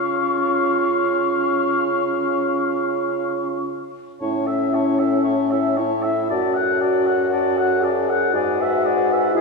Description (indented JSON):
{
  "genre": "classical, slow romantic movement for wind quintet",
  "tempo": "47-60 BPM",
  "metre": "4/4",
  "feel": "rubato",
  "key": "Db major, A major from 4.2 s",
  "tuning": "A4 = 440 Hz",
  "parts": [
    { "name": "mellow hollow silver concert flute", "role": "melody", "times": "0.0-9.4 s", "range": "E5 to Db6", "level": "-26 LUFS", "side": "left 5 dB", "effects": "none" },
    { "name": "mellow oboe", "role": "second line", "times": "0.0-9.4 s", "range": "C#5 to F#5", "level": "-26 LUFS", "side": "left 5 dB", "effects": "none" },
    { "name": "clear clarinet", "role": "accompaniment", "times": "0.0-9.4 s", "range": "E4 to B4", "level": "-25 LUFS", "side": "right 6 dB", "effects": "none" },
    { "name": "warm French horn", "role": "accompaniment", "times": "0.0-9.4 s", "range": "Db4 to G#4", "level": "-22 LUFS", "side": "left 3 dB", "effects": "none" },
    { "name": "warm bassoon", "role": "bass", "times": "0.0-9.4 s", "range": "F#2 to Db3", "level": "-25 LUFS", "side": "right 2 dB", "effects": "none" }
  ],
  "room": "wet church reverb, RT60 2.8 s",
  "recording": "recorded in a church or concert hall",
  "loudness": "-18 LUFS",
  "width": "side -3 dB against mid",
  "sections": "0.0-4.2 A section; 4.2-9.4 B section",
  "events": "none",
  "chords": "0.0 Db; 4.2 A; 6.3 D/F#; 8.3 E7/G#"
}